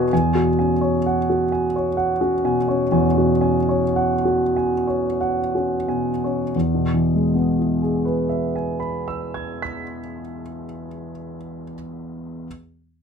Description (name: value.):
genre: classical, impressionist solo piano.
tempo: 41-66 BPM.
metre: 3/4.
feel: rubato.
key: E major.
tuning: A4 = 442 Hz.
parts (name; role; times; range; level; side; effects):
clear concert grand piano; solo; 0.0-12.5 s; E2 to B6; -19 LUFS; equal; none.
room: light reverb.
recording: close, detailed microphones.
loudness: -18 LUFS.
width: side -6 dB against mid.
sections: 0.1-6.5 A section; 6.5-10.3 B section.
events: slowing down 0.0-6.5.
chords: 0.1 E69; 6.5 E.